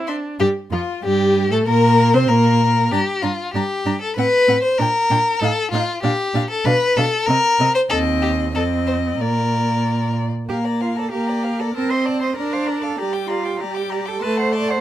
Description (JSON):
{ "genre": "quick classical-period movement for string quartet", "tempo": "96 BPM", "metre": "2/4", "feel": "straight", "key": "Bb major", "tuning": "A4 = 440 Hz", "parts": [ { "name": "rich viola", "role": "accompaniment", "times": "0.0-14.8 s", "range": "F3 to E4", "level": "-21 LUFS", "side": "right 2 dB", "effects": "none" }, { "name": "rich cello", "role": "bass", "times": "0.0-14.8 s", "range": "Eb2 to D5", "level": "-23 LUFS", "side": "right 3 dB", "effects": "none" }, { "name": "rich violin", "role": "melody", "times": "0.1-14.8 s", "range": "F4 to D6", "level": "-26 LUFS", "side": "left 8 dB", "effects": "none" }, { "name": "rich violin", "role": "second line", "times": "0.1-14.8 s", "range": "F4 to A5", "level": "-20 LUFS", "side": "left 2 dB", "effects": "none" } ], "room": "light reverb", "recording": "none", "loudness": "-16 LUFS", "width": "side -12 dB against mid", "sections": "0.4-10.5 A section; 10.5-14.8 A section", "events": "none", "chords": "0.4 Fadd9; 1.7 Bbsus2; 2.3 N.C.; 2.9 Gm; 4.2 F#dim/A; 4.8 Gm/Bb; 5.4 F7; 6.0 Bb; 6.7 Bm7; 7.3 Cm; 7.9 Cm/Eb; 8.6 F7(no3); 9.2 Bb; 11.7 Adim/C; 12.4 Bb/D; 13.0 Gm; 14.2 F#dim/A", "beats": "| 0.40 1.04 | 1.67 2.30 | 2.92 3.55 | 4.17 4.79 | 5.42 6.04 | 6.66 7.28 | 7.91 8.55 | 9.20 9.85 | 10.49 11.12 | 11.75 12.37 | 12.99 13.61 | 14.23" }